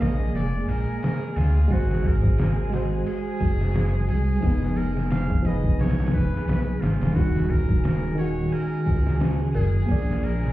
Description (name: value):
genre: trip hop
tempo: 88 BPM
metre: 4/4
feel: swing 56% on 16ths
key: Eb minor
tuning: A4 = 438 Hz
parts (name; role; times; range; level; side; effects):
- trumpet with metal mute; melody; 0.0-10.5 s; F4 to F5; -36 LUFS; right 1 dB; tape echo
- barky reed electric piano; accompaniment; 0.0-10.5 s; Eb3 to F5; -28 LUFS; equal; overdrive, fast tremolo
- bright studio string section; sustained chords; 0.0-10.5 s; Ab3 to Ab4; -33 LUFS; right 1 dB; vintage 12-bit sampler grit
- dark detuned saw bass; bass; 0.0-10.5 s; Eb1 to D2; -24 LUFS; equal; none
- trip hop sampler-style drum kit; drums; 0.0-10.5 s; hi-hat, kick drum, snare drum; -25 LUFS; equal; overdrive
- dark detuned synth bell; arpeggios; 7.2-9.9 s; Db4 to Bb4; -34 LUFS; left 2 dB; chorus, tape echo
room: digital ambience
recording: heard muffled through a wall, club reverb, vinyl crackle, EQ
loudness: -21 LUFS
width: side -16 dB against mid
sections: 0.0-10.5 A section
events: none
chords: 0.0 Bb7; 1.7 Ab7; 4.4 Fm7b5; 7.2 Ebm7; 9.9 Bb7